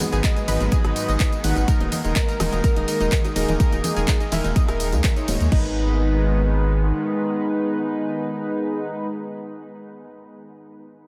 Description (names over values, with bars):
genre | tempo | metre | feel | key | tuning
progressive house | 125 BPM | 4/4 | straight | G# minor | A4 = 440 Hz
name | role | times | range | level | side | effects
filtered supersaw swell | sustained chords | 0.0-9.1 s | D#3 to B3 | -32 LUFS | equal | sidechain pumping
analog pluck | arpeggios | 0.0-9.1 s | G#3 to B4 | -36 LUFS | equal | subtle chorus, sidechain pumping, tape echo
deep house drum kit | drums | 0.0-5.6 s | crash cymbal, handclaps, hi-hat, ride cymbal, rim click, tambourine | -32 LUFS | equal | studio reverb
congas and bongos | percussion | 0.0-5.4 s | none | -36 LUFS | equal | none
chorused polysynth | stabs | 0.1-9.1 s | G#2 to D#5 | -29 LUFS | equal | sidechain pumping, tape echo
saturated sub bass | bass | 0.1-6.9 s | D#1 to D#2 | -24 LUFS | equal | sidechain pumping
warm velvety synth lead | melody | 0.2-5.0 s | G#4 to F#5 | -33 LUFS | equal | chorus, sidechain pumping, tape echo
electronic kick drum | drums | 0.2-5.6 s | none | -22 LUFS | equal | studio reverb
room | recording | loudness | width
moderate huge ambient reverb, RT60 8.2 s | dreamy mix soaked in reverb | -21 LUFS | mono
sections
0.0-5.5 A section; 5.5-9.4 B section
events
drop 0.0-5.5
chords
0.0 G#m; 1.7 D#sus4; 5.5 G#m